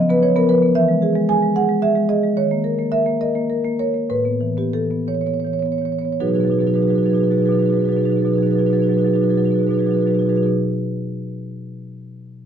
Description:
classical, contemporary piece for solo marimba; 51-76 BPM (dotted quarters); 6/8; rubato; B major; A4 = 440 Hz
marimba with medium mallets; solo; 0.0-10.5 s; A2 to G#5; -16 LUFS; right 1 dB
light reverb; dark, warm production; -16 LUFS; side -8 dB against mid
0.0-6.2 A section; 6.2-10.8 B section
slowing down 1.6-6.2
0.0 C#9; 0.8 E; 2.4 D#5; 4.1 Aadd9; 6.2 B6

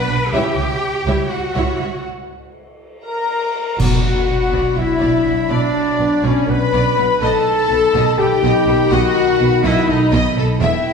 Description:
cinematic, epic orchestral film score; 247 BPM (eighths); 7/8; straight; A4 = 439 Hz
warm symphonic violin section; melody; 0.0-10.9 s; C#5 to B5; -28 LUFS; left 5 dB
rich symphonic violin section; second line; 0.0-10.9 s; F#4 to B5; -26 LUFS; left 2 dB
rich studio viola section; accompaniment; 0.0-10.9 s; G3 to B4; -25 LUFS; left 1 dB
rich symphonic cello section; bass; 0.0-10.7 s; E2 to B4; -24 LUFS; right 2 dB
rich studio double bass section; bass; 0.1-10.7 s; E1 to C#2; -21 LUFS; right 3 dB
dark trombone section; sustained chords; 0.3-0.5, 3.8-10.9 s; C#3 to D#4; -25 LUFS; right 2 dB
warm French horn section; sustained chords; 0.3-0.5, 3.1-10.9 s; G3 to B4; -19 LUFS; left 4 dB
warm trumpet section; stabs; 0.3-10.9 s; C#4 to E5; -22 LUFS; left 1 dB
cymbal swell, clash cymbals and concert bass drum; percussion; 0.3-4.7 s; -24 LUFS; equal
silver concert flute; second line; 3.0-10.9 s; C#5 to B5; -25 LUFS; left 3 dB
timpani; percussion; 3.8-4.5 s; B2; -22 LUFS; left 1 dB
wet scoring stage reverb, RT60 1.6 s; heard from further back in the room; -14 LUFS; side -5 dB against mid
0.0-3.8 A section; 3.8-10.9 B section
break 2.0-3.8; band accent 3.8-4.3
0.3 C#dim; 3.8 Bm; 7.2 B7

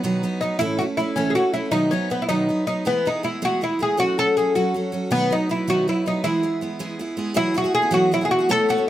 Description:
celtic folk; 107 BPM (dotted quarters); 6/8; straight; E major; A4 = 440 Hz
picked steel-string acoustic guitar; accompaniment; 0.0-8.9 s; A2 to C#5; -24 LUFS; right 2 dB
oud; melody; 0.4-8.9 s; B3 to A4; -20 LUFS; left 1 dB
moderate studio reverb, RT60 0.6 s; -19 LUFS; side -12 dB against mid
0.0-7.4 A section; 7.4-8.9 B section
0.0 B; 0.6 A; 1.7 B; 2.9 E; 4.0 F#m; 5.1 B; 6.2 E; 7.4 Eadd9

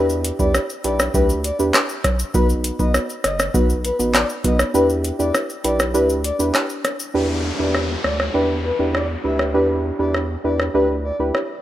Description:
dancehall; 100 BPM; 4/4; straight; E minor; A4 = 436 Hz
breathy flute-like synth lead; melody; 0.0-11.2 s; B4 to E5; -25 LUFS; left 3 dB; chorus
deep mellow chord stab; accompaniment; 0.0-11.4 s; B3 to B4; -21 LUFS; right 2 dB; chorus
saturated sub bass; bass; 0.0-11.3 s; F#1 to E2; -25 LUFS; equal
booming analog drum machine; drums; 0.1-11.5 s; handclaps, hi-hat, kick drum, rim click, shaker; -20 LUFS; equal
downlifter; sound effects; 7.1-11.6 s; -30 LUFS; left 2 dB
light reverb, digital ambience; rough home demo mix; -17 LUFS; side -13 dB against mid
0.0-7.1 A section; 7.1-11.6 B section
kick muted 4.7-7.1; hi-hats muted 7.1-11.6
0.0 Em7; 2.3 B; 4.7 Em7

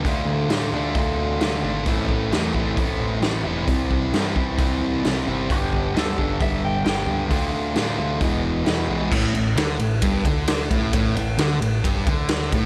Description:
classic rock; 132 BPM; 4/4; straight; A minor; A4 = 440 Hz
overdriven semi-hollow guitar; riff; 0.0-12.7 s; E2 to G4; -28 LUFS; equal
sludgy distorted guitar; riff; 0.0-12.7 s; E2 to D4; -28 LUFS; equal; overdrive
growling picked electric bass; bass; 0.0-12.7 s; E1 to A2; -30 LUFS; equal; overdrive
raw garage drum kit; drums; 0.0-12.6 s; crash cymbal, hi-hat, kick drum, ride cymbal, snare drum; -26 LUFS; equal
lightly driven lead guitar; second line; 5.5-7.7 s; G4 to G5; -31 LUFS; equal
light reverb, small room reverb; -22 LUFS; mono
0.0-9.1 A section; 9.1-12.7 B section
0.0 Dm; 1.9 Am; 3.7 C; 5.5 G; 7.3 Dm; 8.2 E; 9.1 A5

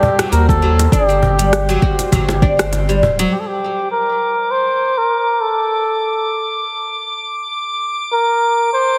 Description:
organic downtempo; 100 BPM; 4/4; swing 56% on 16ths; G harmonic minor; A4 = 441 Hz
trumpet with cup mute; melody; 0.0-9.0 s; G4 to C5; -19 LUFS; equal; digital delay
cajon; percussion; 0.0-3.2 s; -24 LUFS; equal
drifting glass-harmonics texture; texture; 0.0-9.0 s; C5 to D6; -27 LUFS; equal; chorus, built-in reverb
oud; arpeggios; 0.2-3.3 s; F#3 to F#4; -21 LUFS; equal; digital delay
organic electronic drum kit; drums; 0.2-3.3 s; cabasa, hi-hat, rim click; -24 LUFS; equal; low-pass filter on hats, studio reverb, low-pass filter on perc, low-pass filter on snare
round analog bass; bass; 0.3-3.3 s; D1 to Eb2; -19 LUFS; equal; sidechain pumping
electronic kick drum; drums; 0.5-2.6 s; -18 LUFS; equal; studio reverb
moderate lush hall reverb, RT60 2.6 s; heavily compressed radio sound, multiband compression; -16 LUFS; mono
0.0-3.3 A section; 3.3-9.0 B section
0.0 Eb6; 0.9 G5; 3.3 N.C.

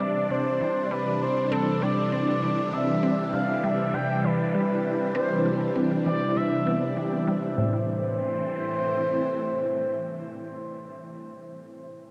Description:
ambient, sequencer-driven space music; 99 BPM; 4/4; straight; A minor; A4 = 442 Hz
expressive synth lead; melody; 0.0-10.7 s; A4 to G5; -31 LUFS; equal; chorus, analog delay
phased string machine; sustained chords; 0.0-10.8 s; A2 to D4; -30 LUFS; equal; ensemble chorus, phaser
resonant blip pluck; riff; 0.0-7.9 s; A2 to C4; -34 LUFS; equal; phaser, analog chorus, vintage 12-bit sampler grit, analog delay
bubbling stepped-filter texture; texture; 0.0-7.6 s; D4 to D5; -45 LUFS; equal
wet huge ambient reverb, RT60 9.1 s; dark, warm production; -26 LUFS; mono
0.0-7.6 A section; 7.6-10.0 B section
0.0 C; 7.6 Am

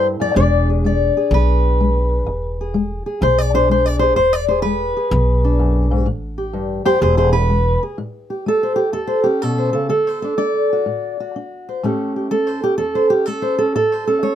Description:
acoustic country blues, solo or duo; 126 BPM; 4/4; swing 67% on 8ths; A4 = 436 Hz
fingerpicked steel-string acoustic guitar; melody; 0.0-14.3 s; E2 to D5; -17 LUFS; equal
upright bass; bass; 0.4-7.8 s; E1 to B1; -18 LUFS; equal
light reverb; close, detailed microphones; -15 LUFS; side -10 dB against mid
0.0-8.0 A section; 8.0-14.3 B section
steel-string acoustic guitar solo 0.0-8.0
0.4 E7; 6.1 A7(no3); 7.0 E; 8.0 A7; 9.9 D7; 11.8 A7

